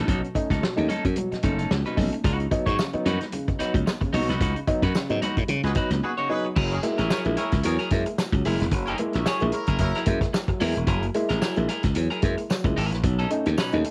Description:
funk; 111 BPM; 4/4; swing 56% on 16ths; F# mixolydian; A4 = 439 Hz
electric guitar at the edge of break-up; accompaniment; 0.0-13.9 s; C#4 to C#5; -33 LUFS; equal; cassette tape
glassy slap bass; bass; 0.0-13.8 s; E1 to C#3; -27 LUFS; equal
dark upright piano; stabs; 0.1-13.9 s; B2 to E4; -31 LUFS; equal; cassette tape, analog delay
warm soul drum kit; drums; 0.1-13.9 s; crash cymbal, hi-hat, kick drum, snare drum; -29 LUFS; equal
congas; percussion; 0.3-6.0 s; -38 LUFS; equal
tambourine; percussion; 2.8-13.7 s; -46 LUFS; equal
warm horn section; second line; 5.6-10.0 s; C#4 to E5; -34 LUFS; equal; cassette tape
light reverb, small room ambience; home recording on cassette; -24 LUFS; mono
0.0-6.6 A section; 6.6-13.9 B section
band accent 4.4-6.6
0.0 B9; 2.2 C#9sus4; 6.6 F#9; 13.0 B9

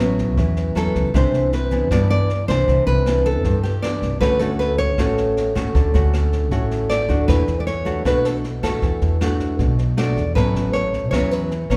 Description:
bossa nova; 156 BPM; 4/4; straight; A major; A4 = 440 Hz
nylon-string guitar; accompaniment; 0.0-11.8 s; G2 to F#4; -24 LUFS; equal
upright bass; bass; 0.0-11.8 s; A1 to G2; -24 LUFS; equal
jazz brush drum kit; drums; 0.2-11.8 s; kick drum, rim click, snare drum; -28 LUFS; equal
nylon-string guitar; melody; 0.8-11.8 s; G4 to D5; -25 LUFS; equal
moderate scoring stage reverb, RT60 1.7 s; recorded in a church or concert hall; -19 LUFS; mono
0.0-11.8 A section
0.0 A69; 1.1 Cmaj9; 4.2 Dmaj7; 7.3 E9sus4; 10.4 A69

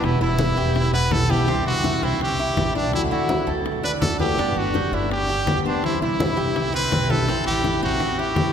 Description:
latin, Cuban son and guajira; 165 BPM; 4/4; straight; A4 = 440 Hz
brilliant trumpet; melody; 0.0-8.5 s; D4 to B4; -24 LUFS; equal
fingerpicked steel-string acoustic guitar; accompaniment; 0.0-8.5 s; B2 to G4; -27 LUFS; left 2 dB
Cuban tres; arpeggios; 0.0-8.5 s; B3 to D5; -28 LUFS; right 3 dB
upright bass; bass; 0.0-8.5 s; E1 to E2; -26 LUFS; right 1 dB
bongos; percussion; 0.0-8.5 s; -30 LUFS; left 3 dB
congas; percussion; 0.0-8.5 s; -28 LUFS; equal
wet cathedral reverb, RT60 4.7 s; recorded in a church or concert hall; -19 LUFS; side -8 dB against mid
0.0-8.5 A section
0.0 Em; 1.5 Cadd9; 2.9 Dadd9; 4.4 G; 5.8 Cadd9; 7.3 Am7

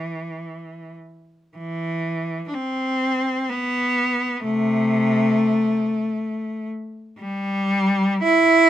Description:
classical, free, expressive piece for unaccompanied cello; free time; A minor; A4 = 440 Hz
rich cello; solo; 0.0-8.7 s; C3 to E4; -19 LUFS; equal
little or no reverb; close, detailed microphones; -19 LUFS; side -11 dB against mid
0.0-1.6 A section; 1.6-8.7 B section

